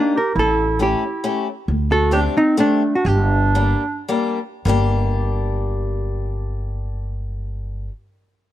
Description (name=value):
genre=musette waltz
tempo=99-137 BPM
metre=3/4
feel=straight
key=G minor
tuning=A4 = 436 Hz
part: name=hollow-body jazz guitar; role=melody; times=0.0-4.1 s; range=D4 to Bb4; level=-18 LUFS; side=equal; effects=none
part: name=warm clarinet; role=second line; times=0.0-4.1 s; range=A3 to G4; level=-23 LUFS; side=right 5 dB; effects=none
part: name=picked old ladder-braced acoustic guitar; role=accompaniment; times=0.0-7.9 s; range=G3 to G4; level=-23 LUFS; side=left 5 dB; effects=none
part: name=upright bass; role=bass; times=0.4-7.9 s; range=G1 to D2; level=-20 LUFS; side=equal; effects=none
room=small room ambience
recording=dry, close 1970s-style studio recording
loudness=-17 LUFS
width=side -13 dB against mid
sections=0.0-4.7 A section; 4.7-8.3 B section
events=slowing down 1.7-4.7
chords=0.4 A7; 1.7 D7sus4; 3.0 Gm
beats=| 0.36 0.80 1.24 | 1.68 2.12 2.57 | 3.04 3.54 4.08 | 4.66 5.27 5.88 | 6.48 7.08 7.68